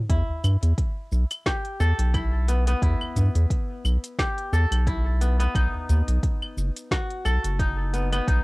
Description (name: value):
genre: organic downtempo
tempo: 88 BPM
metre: 4/4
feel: swing 55% on 16ths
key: E harmonic minor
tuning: A4 = 440 Hz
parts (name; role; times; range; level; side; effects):
- kora; arpeggios; 0.1-8.4 s; B3 to A4; -30 LUFS; left 1 dB; cassette tape, analog delay
- round analog bass; bass; 0.1-8.4 s; F#1 to G2; -21 LUFS; equal; sidechain pumping
- deep house drum kit; drums; 0.1-8.4 s; claves, hi-hat, shaker, snare drum; -30 LUFS; equal; small room ambience, cassette tape
- electronic kick drum; drums; 0.1-8.4 s; none; -25 LUFS; equal; small room ambience, cassette tape
- udu; percussion; 0.3-6.0 s; none; -32 LUFS; equal; none
room: little or no reverb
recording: home recording on cassette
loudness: -21 LUFS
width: side -23 dB against mid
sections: 0.1-8.4 A section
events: none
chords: 0.1 Em; 5.6 B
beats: | 0.10 0.78 1.46 2.14 | 2.82 3.50 4.19 4.87 | 5.55 6.23 6.91 7.60 | 8.28